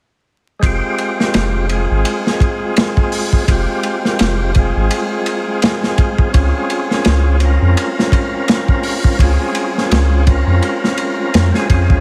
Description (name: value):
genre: trip hop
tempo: 84 BPM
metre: 4/4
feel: swing 57% on 16ths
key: F minor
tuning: A4 = 442 Hz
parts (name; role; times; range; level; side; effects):
- percussive tonewheel organ; accompaniment; 0.6-12.0 s; Ab3 to Bb4; -21 LUFS; equal; overdrive, fast rotary speaker, tremolo, tape echo
- soft dub sub bass; bass; 0.6-12.0 s; F1 to F2; -16 LUFS; equal; tube saturation
- crunchy breakbeat drum kit; drums; 0.6-12.0 s; hi-hat, kick drum, ride cymbal, snare drum; -18 LUFS; equal; none
- flickering grainy texture; texture; 1.6-12.0 s; Ab3 to F4; -31 LUFS; equal; none
room: studio ambience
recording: echo-heavy mix, vinyl crackle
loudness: -15 LUFS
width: mono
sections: 0.6-12.0 A section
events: none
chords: 0.6 Fmadd9; 6.3 Dbmaj7